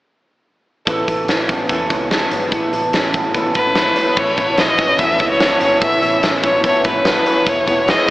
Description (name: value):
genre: jangly indie pop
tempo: 146 BPM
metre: 4/4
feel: straight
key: unclear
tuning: A4 = 442 Hz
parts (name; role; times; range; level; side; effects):
- picked twelve-string acoustic guitar; accompaniment; 0.9-8.1 s; E3 to C#5; -21 LUFS; right 1 dB; wide subtle chorus
- electric guitar through a small old amp; arpeggios; 0.9-8.1 s; E3 to G#4; -22 LUFS; equal; ensemble chorus
- vintage muted picked electric bass; bass; 0.9-7.9 s; E1 to E2; -33 LUFS; equal; none
- big rock drum kit; drums; 0.9-8.1 s; crash cymbal, hi-hat, kick drum, snare drum; -18 LUFS; equal; none
- bright violin; melody; 3.6-8.1 s; B4 to E5; -15 LUFS; left 1 dB; diffuse ambient delay
room: wet cathedral reverb, RT60 6.6 s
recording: dreamy mix soaked in reverb, AM radio sound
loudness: -13 LUFS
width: side -17 dB against mid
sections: 0.9-4.2 A section; 4.2-8.1 B section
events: none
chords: 0.9 Aadd9; 7.5 E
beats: | 0.87 1.28 1.70 2.11 | 2.52 2.94 3.35 3.76 | 4.17 4.58 5.00 5.41 | 5.82 6.23 6.64 7.06 | 7.47 7.88